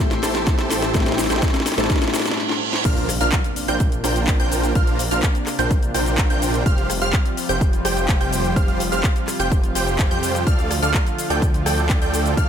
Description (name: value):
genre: EDM, festival progressive house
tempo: 126 BPM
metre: 4/4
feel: straight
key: unclear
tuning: A4 = 441 Hz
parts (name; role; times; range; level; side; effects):
- felt-muted upright piano; accompaniment; 0.0-2.9 s; A2 to E4; -26 LUFS; left 6 dB; sidechain pumping, ping-pong delay
- lush unison pad; sustained chords; 0.0-12.5 s; C3 to C6; -28 LUFS; equal; chorus, sidechain pumping
- dense compressed supersaw; riff; 0.0-12.5 s; D4 to A5; -24 LUFS; right 2 dB; sidechain pumping, ping-pong delay
- detuned saw bass; bass; 0.0-12.5 s; F1 to F2; -25 LUFS; equal; sidechain pumping
- house drum kit; drums; 0.0-12.5 s; cabasa, crash cymbal, handclaps, hi-hat, rim click, snare drum; -25 LUFS; left 1 dB; overdrive, studio reverb
- riser, reverse cymbal and impact; sound effects; 0.1-4.8 s; none; -28 LUFS; right 1 dB; none
- electronic kick drum; drums; 0.5-12.5 s; none; -19 LUFS; equal; overdrive, studio reverb
- wide unison pluck; arpeggios; 2.8-12.5 s; F6 to G6; -28 LUFS; right 1 dB; phaser, sidechain pumping, ping-pong delay
room: light reverb, digital ambience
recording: none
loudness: -17 LUFS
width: side -8 dB against mid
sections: 0.0-2.9 A section; 2.9-12.5 B section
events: build-up 0.0-2.9; drum fill 0.0-2.4, 2.4-2.9; riser 0.1-2.4; reverse cymbal 1.9-2.9; drop 2.9-12.5; impact 2.9-4.8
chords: 0.0 Am7; 2.9 Bbadd9; 6.7 Fsus2; 10.5 Dm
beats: 0.47 | 0.95 1.42 1.90 2.37 | 2.85 3.33 3.80 4.28 | 4.75 5.23 5.71 6.18 | 6.66 7.14 7.61 8.09 | 8.56 9.04 9.52 9.99 | 10.47 10.95 11.42 11.90 | 12.37